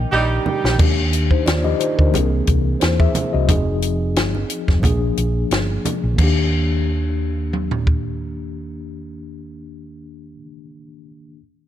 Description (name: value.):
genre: lush 1970s-style soul.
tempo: 89 BPM.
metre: 4/4.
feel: swing 54% on 16ths.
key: Eb major.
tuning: A4 = 439 Hz.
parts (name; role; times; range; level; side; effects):
mellow tine electric piano; accompaniment; 0.0-11.4 s; Eb3 to E5; -24 LUFS; left 3 dB; slow stereo tremolo.
hollow-body short-scale fingered electric bass; bass; 0.0-10.3 s; F1 to E2; -21 LUFS; equal; none.
warm horn section; stabs; 0.1-0.8 s; G3 to G4; -20 LUFS; right 4 dB; none.
congas; percussion; 0.1-6.5 s; none; -28 LUFS; right 4 dB; none.
compact cocktail drum kit; drums; 0.7-8.0 s; crash cymbal, hi-hat, kick drum, snare drum, toms; -19 LUFS; equal; none.
room: small room ambience.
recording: none.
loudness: -16 LUFS.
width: side -11 dB against mid.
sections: 0.8-6.2 A section; 6.2-8.9 B section.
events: drum fill 0.0-0.8; band accent 0.0-0.8.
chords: 0.0 Ebmaj7; 2.1 Caug7; 3.5 Fm7; 4.8 Bb7; 6.2 Ebmaj7.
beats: 0.12 | 0.79 1.47 2.14 2.81 | 3.49 4.16 4.83 5.51 | 6.18 6.86 7.53 8.21.